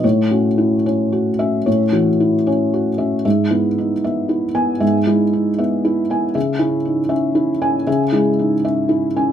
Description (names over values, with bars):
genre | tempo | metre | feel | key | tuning
neoclassical minimalist piano | 109-120 BPM | 3/4 | rubato | unclear | A4 = 440 Hz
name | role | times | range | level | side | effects
felt-muted upright piano | solo | 0.0-9.3 s | G#2 to G#5 | -15 LUFS | equal | none
room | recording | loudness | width
light reverb | minimal, uncompressed stereo recording | -15 LUFS | side -9 dB against mid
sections
0.0-9.3 A section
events
none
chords
0.0 A6; 3.2 E/G#; 6.4 C#m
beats
| 0.03 0.58 1.13 | 1.66 2.19 2.72 | 3.25 3.77 4.29 | 4.81 5.33 5.85 | 6.35 6.86 7.36 | 7.87 8.38 8.90